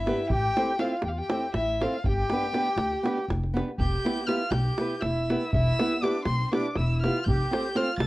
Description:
balkan folk, Balkan wedding band; 241 BPM (eighths); 7/8; straight; A4 = 440 Hz
clear violin; melody; 0.0-8.1 s; E5 to A6; -31 LUFS; left 2 dB; plate reverb
accordion; second line; 0.0-8.1 s; C4 to A4; -32 LUFS; right 2 dB
upright bass; bass; 0.0-8.1 s; E1 to E2; -28 LUFS; equal
nylon-string guitar; accompaniment; 0.1-7.9 s; B3 to C5; -28 LUFS; right 1 dB
davul; percussion; 0.1-8.1 s; -30 LUFS; equal
moderate studio reverb, RT60 0.5 s; worn, warbling old tape, cassette tape, warbly pitch drift; -24 LUFS; side -18 dB against mid
0.0-3.8 A section; 3.8-8.1 A section
0.3 Am; 2.0 G; 3.8 Em; 7.3 F

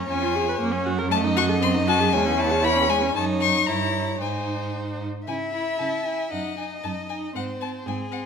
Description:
quick classical-period movement for string quartet; 117 BPM; 2/4; rubato; C# minor; A4 = 435 Hz
clear violin; second line; 0.0-8.3 s; G#4 to E5; -29 LUFS; left 1 dB
clear viola; accompaniment; 0.0-8.3 s; G#3 to Cb5; -27 LUFS; right 2 dB
clear cello; bass; 0.0-8.3 s; E2 to C#3; -27 LUFS; right 4 dB
rich violin; melody; 0.1-8.2 s; F#5 to C#6; -26 LUFS; left 8 dB
wet recital hall reverb, RT60 1.4 s; minimal, uncompressed stereo recording; -21 LUFS; side -6 dB against mid
0.0-5.3 A section; 5.3-8.3 B section
0.1 Db7/F; 0.6 Gb; 1.1 D#dim/F#; 1.6 G#7/F#; 2.1 C#m/E; 3.2 D#m7/F#; 3.7 Gdim7; 4.2 G#; 5.3 C#m; 6.3 F#5; 7.3 G#

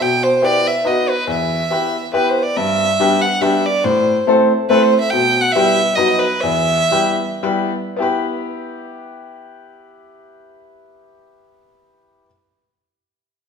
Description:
musette; 104-142 BPM; 3/4; straight; E minor; A4 = 440 Hz
rich violin; melody; 0.0-7.4 s; B4 to G5; -16 LUFS; right 2 dB
bright upright piano; accompaniment; 0.0-12.3 s; E2 to C5; -17 LUFS; left 2 dB
wet recital hall reverb, RT60 1.7 s; minimal, uncompressed stereo recording; -14 LUFS; side -6 dB against mid
0.0-2.6 A section; 2.6-8.0 B section; 8.0-11.4 C section
slowing down 5.1-8.0
0.0 Em/B; 0.8 B; 1.3 Em; 2.6 G; 3.8 Am; 5.1 Em/B; 6.0 B; 6.4 Em

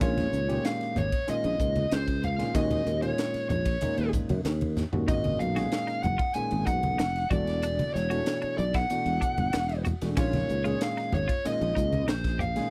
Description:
electric jazz fusion; 94 BPM; 4/4; straight; A4 = 439 Hz
dark smooth lead guitar; melody; 0.0-12.7 s; B#4 to G#5; -33 LUFS; equal; overdrive
dark concert grand piano; accompaniment; 0.0-12.7 s; A#2 to G#4; -36 LUFS; equal
sustaining fretless electric bass; bass; 0.0-12.6 s; E1 to F#2; -32 LUFS; equal; analog chorus
crisp fusion drum kit; drums; 0.0-12.7 s; hi-hat, kick drum, ride cymbal, snare drum, toms; -35 LUFS; equal
congas; percussion; 0.2-12.5 s; -35 LUFS; equal
clean electric guitar; stabs; 5.1-12.6 s; C#4 to G4; -43 LUFS; equal; subtle chorus
little or no reverb; -28 LUFS; mono
0.0-12.7 A section
drum fill 4.8-5.1
0.0 A#m7; 2.5 D#m11; 5.1 G#m11; 7.3 E9sus4; 10.2 A#m7

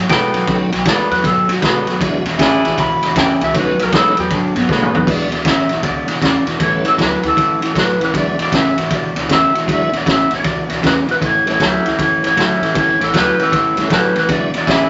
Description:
electric blues shuffle; 156 BPM; 4/4; swing 65% on 8ths; A4 = 436 Hz
electric guitar through a small old amp; riff; 0.0-14.9 s; E2 to G#3; -22 LUFS; equal
upright bass; bass; 0.0-14.9 s; E1 to B2; -36 LUFS; equal
clean lap steel guitar; melody; 0.1-14.9 s; A#3 to B5; -20 LUFS; equal
mellow saxophone section; stabs; 0.1-5.1, 11.6-14.9 s; B3 to B4; -22 LUFS; equal
raw garage drum kit; drums; 0.1-14.8 s; crash cymbal, kick drum, ride cymbal, snare drum, toms; -20 LUFS; equal
tonewheel organ; accompaniment; 0.5-14.5 s; F#3 to E4; -25 LUFS; equal; slow rotary speaker, chorus vibrato
moderate studio reverb, RT60 0.6 s; nothing above 7.7 kHz; -15 LUFS; mono
0.0-5.1 A section; 5.1-14.9 B section
electric slide guitar solo 0.0-5.1; drum fill 4.7-5.1
0.0 B7; 2.0 E7; 3.5 B7; 5.1 E7; 6.6 A7; 8.1 E7; 11.2 A7; 14.3 E7

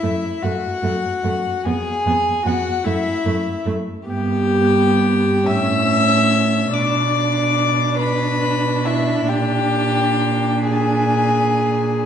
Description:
classical, slow romantic movement for string quartet; 40-51 BPM (dotted quarters); 6/8; rubato; A4 = 440 Hz
warm violin; melody; 0.0-12.1 s; E5 to E6; -22 LUFS; left 5 dB
rich violin; second line; 0.0-12.1 s; E4 to E5; -22 LUFS; left 2 dB
warm viola; accompaniment; 0.0-12.0 s; A3 to D4; -23 LUFS; right 2 dB
rich cello; bass; 0.0-12.1 s; F2 to B2; -21 LUFS; right 3 dB
wet recital hall reverb, RT60 1.5 s; heard from further back in the room, nothing above 10.7 kHz; -16 LUFS; side -8 dB against mid
0.0-12.1 A section
0.0 F#m; 1.7 Fdim; 2.9 F#m7; 4.1 G; 5.5 A; 6.7 Bmadd11; 9.3 Gm/Bb

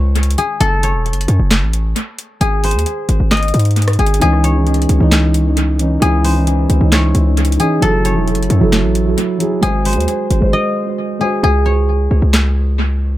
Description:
hip hop, trap; 133 BPM; 4/4; half-time; C# harmonic minor; A4 = 436 Hz
guzheng; melody; 0.0-13.2 s; G#4 to D#5; -20 LUFS; left 2 dB; analog delay
hard-hitting 808-style bass; bass; 0.0-13.2 s; E1 to G#2; -14 LUFS; equal
booming analog drum machine; drums; 0.2-12.4 s; handclaps, hi-hat, rim click, snare drum; -20 LUFS; equal; analog delay
dark concert grand piano; accompaniment; 4.2-11.5 s; E3 to B#4; -17 LUFS; right 1 dB; analog delay
little or no reverb; echo-heavy mix; -12 LUFS; side -14 dB against mid
0.0-11.4 A section; 11.4-13.2 B section
break 10.5-11.4; hi-hats muted 11.4-13.2
0.0 C#5; 0.6 F#m; 2.4 G#; 4.2 C#madd9; 7.8 F#m7; 9.6 G#7; 11.4 C#5

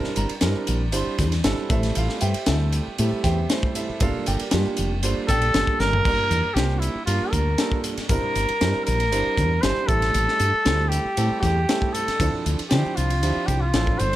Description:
electric jazz fusion; 117 BPM; 4/4; straight; G dorian; A4 = 440 Hz
warm grand piano; accompaniment; 0.0-14.1 s; F3 to C6; -28 LUFS; right 4 dB
woody fretless electric bass; bass; 0.0-14.2 s; F1 to D3; -23 LUFS; equal; analog chorus
crisp fusion drum kit; drums; 0.0-14.2 s; crash cymbal, hi-hat, kick drum, ride cymbal, snare drum, toms; -26 LUFS; left 1 dB
breathy trumpet; melody; 5.3-14.2 s; E4 to C5; -24 LUFS; equal
light reverb; -20 LUFS; side -14 dB against mid
0.0-6.0 A section; 6.0-14.2 B section
drum fill 5.8
0.0 C9/G; 1.7 Am7; 4.0 Gm9; 6.0 Gm7; 8.1 C9/G; 9.9 Am7; 12.2 Dm9

